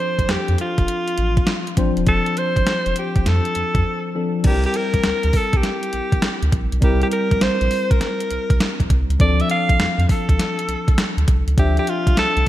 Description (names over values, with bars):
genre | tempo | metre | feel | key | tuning
R&B, new jack swing | 101 BPM | 4/4 | swing 66% on 16ths | unclear | A4 = 440 Hz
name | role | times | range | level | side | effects
edgy alto saxophone | melody | 0.0-12.5 s | F4 to F5 | -22 LUFS | equal | none
tine electric piano | accompaniment | 0.0-12.5 s | F3 to E5 | -24 LUFS | left 3 dB | lush chorus
round analog bass | bass | 0.2-12.4 s | E1 to F2 | -20 LUFS | equal | none
crisp 8-bit digital drum machine | drums | 0.2-12.5 s | crash cymbal, hi-hat, kick drum, snare drum | -20 LUFS | equal | overdrive, gated reverb
room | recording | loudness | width
light reverb, digital ambience | bright 1980s-style digital production | -16 LUFS | side -14 dB against mid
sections
0.0-4.4 A section; 4.4-12.5 B section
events
break 3.9-4.4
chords
0.0 F6; 4.4 C7; 9.2 Dm7